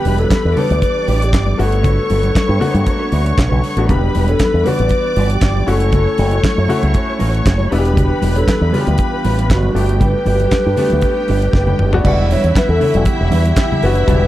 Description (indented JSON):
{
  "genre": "disco",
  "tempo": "118 BPM",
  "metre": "4/4",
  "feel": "straight",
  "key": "E dorian",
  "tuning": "A4 = 440 Hz",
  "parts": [
    { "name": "mellow wooden-headed alto flute", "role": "melody", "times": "0.0-14.3 s", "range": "F#4 to D5", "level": "-20 LUFS", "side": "left 1 dB", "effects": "none" },
    { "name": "rich studio string section", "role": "second line", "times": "0.0-14.3 s", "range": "E4 to D6", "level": "-24 LUFS", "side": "left 1 dB", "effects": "none" },
    { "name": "clear concert grand piano", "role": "accompaniment", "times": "0.0-14.3 s", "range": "G3 to A4", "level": "-24 LUFS", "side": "left 4 dB", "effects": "none" },
    { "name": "percussive tonewheel organ", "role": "sustained chords", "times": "0.0-14.3 s", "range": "D3 to F#5", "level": "-26 LUFS", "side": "right 2 dB", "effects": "none" },
    { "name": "mellow electric guitar", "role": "accompaniment", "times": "0.1-14.2 s", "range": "G3 to C#5", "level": "-25 LUFS", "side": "right 4 dB", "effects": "analog chorus" },
    { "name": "fingered electric bass with an envelope filter", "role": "bass", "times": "0.1-14.3 s", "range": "E1 to G2", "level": "-16 LUFS", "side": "equal", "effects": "none" },
    { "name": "damped 70s drum kit", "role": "drums", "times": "0.1-14.2 s", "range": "crash cymbal, handclaps, hi-hat, kick drum, snare drum, toms", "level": "-18 LUFS", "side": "equal", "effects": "none" },
    { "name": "congas", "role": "percussion", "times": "0.1-14.2 s", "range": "none", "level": "-23 LUFS", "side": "left 2 dB", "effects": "none" }
  ],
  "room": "small room ambience",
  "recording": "dry, close 1970s-style studio recording",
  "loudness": "-12 LUFS",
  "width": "side -14 dB against mid",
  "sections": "0.0-12.1 A section; 12.1-14.3 B section",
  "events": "drum fill 11.5-12.1",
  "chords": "0.0 Em9; 1.6 Gmaj7; 3.9 Em9; 5.7 F#m7; 7.7 Em9; 9.8 Gmaj7; 12.1 Em7",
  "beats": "0.30 0.82 1.33 | 1.84 2.35 2.87 3.38 | 3.89 4.40 4.91 5.42 | 5.93 6.44 6.95 7.46 | 7.97 8.48 8.99 9.50 | 10.01 10.52 11.03 11.54 | 12.05 12.56 13.07 13.58 | 14.09"
}